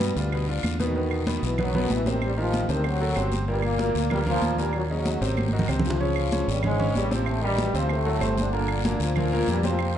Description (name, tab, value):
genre	latin, salsa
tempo	190 BPM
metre	4/4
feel	straight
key	unclear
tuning	A4 = 440 Hz
part	mellow trombone section	melody	0.0-10.0 s	F#2 to F4	-28 LUFS	left 1 dB	none
part	clear grand piano	accompaniment	0.0-10.0 s	Bb2 to Db5	-28 LUFS	right 1 dB	none
part	fingered electric bass	bass	0.0-10.0 s	G1 to G2	-27 LUFS	equal	none
part	congas	percussion	0.0-10.0 s	none	-30 LUFS	equal	none
part	guiro	percussion	0.0-10.0 s	none	-40 LUFS	left 8 dB	none
part	claves	percussion	0.3-9.9 s	none	-40 LUFS	right 8 dB	none
room	moderate large studio reverb, RT60 1.2 s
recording	dark, warm production, nothing above 11.0 kHz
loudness	-22 LUFS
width	side -10 dB against mid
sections	1.0-10.0 A section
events	drum fill 5.4-6.0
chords	0.0 G7; 1.0 Esus2; 2.2 Am7b5; 2.8 D7; 3.5 Gm7; 4.7 Ebm7; 5.4 Ab7; 6.0 Dbmaj7; 7.3 Am7b5; 7.9 D7; 8.5 Gm7